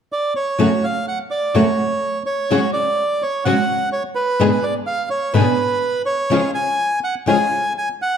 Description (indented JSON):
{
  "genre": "tango",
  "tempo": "125 BPM",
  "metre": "4/4",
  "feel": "rubato",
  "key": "F# harmonic minor",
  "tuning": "A4 = 440 Hz",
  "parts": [
    { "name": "bandoneon", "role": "melody", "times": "0.1-8.2 s", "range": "B4 to G#5", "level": "-19 LUFS", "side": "right 2 dB", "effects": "none" },
    { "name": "flamenco guitar", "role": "accompaniment", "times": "0.6-7.4 s", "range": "F#2 to G#4", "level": "-20 LUFS", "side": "left 4 dB", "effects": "none" },
    { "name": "dark chamber string section", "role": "stabs", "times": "0.6-7.5 s", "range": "G#3 to G#4", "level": "-22 LUFS", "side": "right 3 dB", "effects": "none" }
  ],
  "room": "wet large studio reverb, RT60 1.4 s",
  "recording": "dark, warm production",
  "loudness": "-16 LUFS",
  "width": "side -8 dB against mid",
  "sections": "0.6-8.2 A section",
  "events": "none",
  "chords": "0.0 N.C.; 0.6 F#m; 2.5 C#sus4; 4.4 G#dim; 6.3 C#"
}